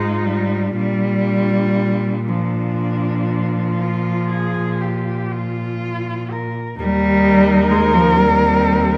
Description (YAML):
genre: classical, lyrical piece for cello ensemble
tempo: 39-44 BPM (dotted quarters)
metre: 12/8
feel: rubato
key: Eb major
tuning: A4 = 440 Hz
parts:
  - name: muted cello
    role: melody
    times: 0.0-9.0 s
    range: F4 to Bb4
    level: -25 LUFS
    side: equal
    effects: none
  - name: muted cello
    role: second line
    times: 0.0-9.0 s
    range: C4 to Bb4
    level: -29 LUFS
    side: equal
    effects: none
  - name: muted cello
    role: accompaniment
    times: 0.0-9.0 s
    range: F3 to Ab3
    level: -21 LUFS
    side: equal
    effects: none
  - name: muted cello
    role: bass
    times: 0.0-9.0 s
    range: Eb2 to Bb2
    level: -24 LUFS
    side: equal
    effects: none
room: light reverb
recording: close, detailed microphones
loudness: -18 LUFS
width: mono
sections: 0.0-6.8 A section; 6.8-9.0 B section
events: none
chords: 0.0 Fm7/Ab; 0.8 Bb; 6.8 Eb